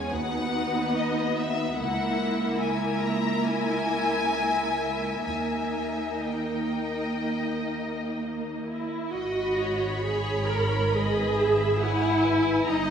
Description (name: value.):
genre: classical, slow romantic movement for string orchestra.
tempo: 60-73 BPM.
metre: 4/4.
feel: rubato.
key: G# minor.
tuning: A4 = 440 Hz.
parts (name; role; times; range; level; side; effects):
warm studio violin section; melody; 0.0-12.9 s; B4 to A#5; -31 LUFS; left 4 dB; none.
warm studio violin section; second line; 0.0-12.9 s; F#4 to B5; -32 LUFS; left 2 dB; none.
warm studio viola section; accompaniment; 0.0-12.9 s; A#3 to A#4; -27 LUFS; right 1 dB; none.
warm studio cello section; bass; 0.0-12.9 s; C#2 to G#2; -33 LUFS; right 3 dB; none.
warm studio double bass section; bass; 0.1-12.9 s; G1 to D#2; -34 LUFS; right 2 dB; none.
room: wet concert hall reverb, RT60 1.8 s.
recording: none.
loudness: -24 LUFS.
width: side -7 dB against mid.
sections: 0.0-9.1 A section; 9.1-12.9 A section.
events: none.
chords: 0.1 B/D#; 1.8 A#dim/C#; 5.3 D#; 9.1 G#m.